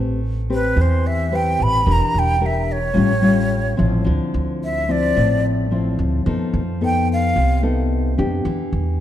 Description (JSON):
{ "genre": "bossa nova", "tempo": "109 BPM", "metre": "4/4", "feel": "straight", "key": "A minor", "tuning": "A4 = 440 Hz", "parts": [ { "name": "nylon-string guitar", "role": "accompaniment", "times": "0.0-9.0 s", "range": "A2 to B4", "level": "-21 LUFS", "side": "left 3 dB", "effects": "none" }, { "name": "upright bass", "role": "bass", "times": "0.0-9.0 s", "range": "E1 to F2", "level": "-20 LUFS", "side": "right 1 dB", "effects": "none" }, { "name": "breathy jazz flute", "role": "melody", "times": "0.5-7.6 s", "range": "B4 to B5", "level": "-21 LUFS", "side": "right 1 dB", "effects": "none" } ], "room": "light reverb", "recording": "dark, warm production", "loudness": "-16 LUFS", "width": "side -11 dB against mid", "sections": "0.0-9.0 A section", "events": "flute solo 0.0-9.0", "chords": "0.0 Am9; 1.9 Em7b5; 3.0 A7alt; 4.1 Dm9; 6.3 F7#11; 8.5 Em7" }